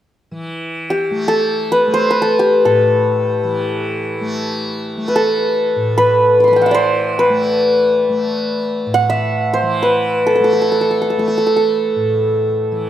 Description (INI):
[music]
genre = indian classical, Hindustani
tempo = free time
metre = none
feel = none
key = A raga kafi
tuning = A4 = 437 Hz
[part]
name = tanpura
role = drone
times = 0.3-12.9 s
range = A2 to A3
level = -22 LUFS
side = equal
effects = none
[part]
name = santur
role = melody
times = 0.9-12.9 s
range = G4 to D6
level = -14 LUFS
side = equal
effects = none
[sound]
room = wet recital hall reverb, RT60 1.5 s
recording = none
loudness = -13 LUFS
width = side -11 dB against mid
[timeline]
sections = 0.3-12.9 A section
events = none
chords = none